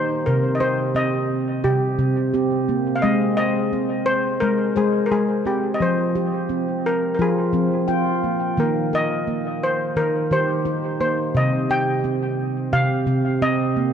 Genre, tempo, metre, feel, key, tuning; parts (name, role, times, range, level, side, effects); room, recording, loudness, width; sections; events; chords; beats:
world meditative, meditative tuned percussion; 87 BPM; 4/4; swing 56% on 16ths; C minor; A4 = 440 Hz
steel pan; melody; 0.0-13.9 s; G4 to G5; -23 LUFS; left 1 dB; tape echo
handpan; arpeggios; 0.0-13.9 s; C3 to G5; -20 LUFS; right 1 dB; tape echo
wet church reverb, RT60 3.5 s; dark, warm production; -18 LUFS; side -8 dB against mid
0.0-13.9 A section
0.3 Cm; 3.0 Ab; 5.8 Fm; 8.6 Eb; 11.3 C5
| 0.27 0.96 1.65 2.34 | 3.04 3.73 4.42 5.12 | 5.81 6.50 7.19 7.89 | 8.58 9.27 9.96 10.65 | 11.35 12.04 12.73 13.42